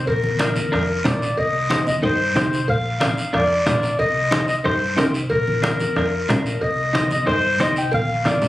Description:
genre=latin, cumbia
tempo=183 BPM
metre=4/4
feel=straight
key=C minor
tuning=A4 = 439 Hz
part: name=mellow clarinet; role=melody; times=0.0-8.5 s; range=Bb4 to G5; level=-21 LUFS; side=left 1 dB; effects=none
part: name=hollow-body short-scale fingered electric bass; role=bass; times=0.1-8.5 s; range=Bb1 to G2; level=-26 LUFS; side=equal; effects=none
part: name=bombo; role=percussion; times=0.1-8.4 s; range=none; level=-28 LUFS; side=equal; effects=none
part: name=congas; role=percussion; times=0.1-8.5 s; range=none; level=-25 LUFS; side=equal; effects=none
part: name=cowbell and timbales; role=percussion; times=0.1-8.4 s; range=none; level=-29 LUFS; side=right 2 dB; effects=none
part: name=guiro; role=percussion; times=0.1-8.5 s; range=none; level=-31 LUFS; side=right 1 dB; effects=none
part: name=semi-hollow electric guitar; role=accompaniment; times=0.4-8.4 s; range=D4 to Eb5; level=-24 LUFS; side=equal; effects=none
room=moderate studio reverb, RT60 0.8 s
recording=recorded on a phone in the room, club reverb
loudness=-17 LUFS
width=side -15 dB against mid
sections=0.0-8.5 A section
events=drum fill 7.9-8.5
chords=0.1 Bb; 1.4 Cm; 2.7 Bb; 4.0 Cm; 5.3 Bb; 6.6 Cm; 7.9 Bb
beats=| 0.07 0.40 0.73 1.06 | 1.39 1.71 2.04 2.37 | 2.69 3.02 3.35 3.67 | 4.00 4.33 4.66 4.98 | 5.31 5.64 5.96 6.29 | 6.62 6.95 7.28 7.60 | 7.93 8.26

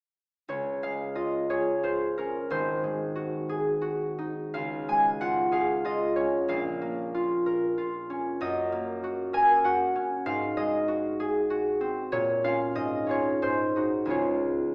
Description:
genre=classical, solo harp piece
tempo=79-100 BPM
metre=3/4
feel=rubato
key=Db major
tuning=A4 = 440 Hz
part: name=concert harp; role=solo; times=0.5-14.7 s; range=Ab1 to Ab5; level=-28 LUFS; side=equal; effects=none
room=wet recital hall reverb, RT60 1.3 s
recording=heard from further back in the room, small speaker sound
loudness=-28 LUFS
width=mono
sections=0.5-14.7 A section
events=none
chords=0.5 Db; 2.5 Ab7; 4.5 Db; 6.5 Bbm; 8.4 Ebm7/Gb; 10.3 Ab7; 12.1 Bbm; 12.8 Db/Ab; 13.4 Ab7; 14.1 Db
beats=| 0.50 1.17 1.84 | 2.51 3.16 3.82 | 4.54 5.21 5.85 | 6.50 7.15 7.78 | 8.41 9.02 9.63 | 10.26 10.87 11.49 | 12.12 12.76 13.41 | 14.12

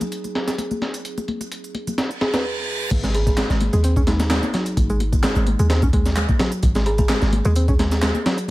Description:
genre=breakbeat, breaks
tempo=129 BPM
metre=4/4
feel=swing 53% on 16ths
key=unclear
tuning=A4 = 440 Hz
part: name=warbly tape-like pad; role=sustained chords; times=0.0-2.4 s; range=F#3 to G#4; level=-35 LUFS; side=left 1 dB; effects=chorus, built-in reverb, vintage 12-bit sampler grit, sidechain pumping
part: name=garage drum kit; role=drums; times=0.0-8.5 s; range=handclaps, hi-hat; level=-32 LUFS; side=right 1 dB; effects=none
part: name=congas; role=percussion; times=0.0-8.5 s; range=none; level=-28 LUFS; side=left 3 dB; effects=none
part: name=breakbeat sampler-style drum kit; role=drums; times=0.1-8.5 s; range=crash cymbal, hi-hat, kick drum, snare drum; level=-21 LUFS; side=equal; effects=low-pass filter on hats, low-pass filter on snare, low-pass filter on kick, low-pass filter on cymbals
part: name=reverse cymbal and impact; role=sound effects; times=2.1-4.8 s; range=none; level=-30 LUFS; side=right 2 dB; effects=none
part: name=buzzing kalimba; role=melody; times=2.2-7.1 s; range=D#4 to B4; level=-30 LUFS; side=right 1 dB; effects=old record sound, dub echo
part: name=warm 808-style bass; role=bass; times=2.9-8.1 s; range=G#1 to D#2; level=-20 LUFS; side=equal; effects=none
part: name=picked electric bass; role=riff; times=3.0-8.5 s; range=F#3 to C#4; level=-25 LUFS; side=equal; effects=vintage 12-bit sampler grit
room=digital ambience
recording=vinyl crackle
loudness=-18 LUFS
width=side -18 dB against mid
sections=0.0-2.9 A section; 2.9-8.5 B section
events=reverse cymbal 2.1-2.9; stop 2.4-2.9; drop 2.9-8.5; impact 2.9-4.8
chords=0.0 G#7; 2.9 G#7(no3)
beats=0.12 0.58 | 1.05 1.51 1.98 2.44 | 2.91 3.38 3.84 4.30 | 4.77 5.24 5.70 6.17 | 6.63 7.10 7.56 8.03 | 8.49

